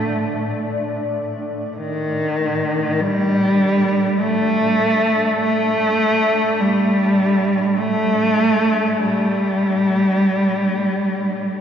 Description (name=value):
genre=ambient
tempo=free time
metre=none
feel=none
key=unclear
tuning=A4 = 440 Hz
part: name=rich cello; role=melody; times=0.0-11.6 s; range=Eb3 to A3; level=-16 LUFS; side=equal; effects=ping-pong delay
part: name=granular cloud pad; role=sustained chords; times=0.0-11.6 s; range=A2 to D5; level=-28 LUFS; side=left 1 dB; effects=built-in reverb
room=wet cathedral reverb, RT60 5.5 s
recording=worn, warbling old tape, cassette tape, warbly pitch drift, nothing above 7.5 kHz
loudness=-16 LUFS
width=side -8 dB against mid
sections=0.0-11.6 A section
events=fade-out on ambient pad 0.0-11.6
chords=0.0 D5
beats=free time